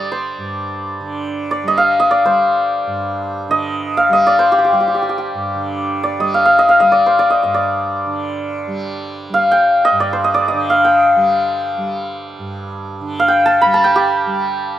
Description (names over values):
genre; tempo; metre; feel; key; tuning
indian classical, Hindustani; free time; none; none; unclear; A4 = 439 Hz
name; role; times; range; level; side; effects
santur; melody; 0.0-14.8 s; G4 to B5; -13 LUFS; equal; slapback echo
tanpura; drone; 0.0-14.8 s; G2 to G3; -26 LUFS; right 3 dB; none
room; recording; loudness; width
little or no reverb; recorded outdoors, with no room sound; -13 LUFS; side -12 dB against mid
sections
0.0-5.6 A section; 5.6-14.8 A section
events
none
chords
none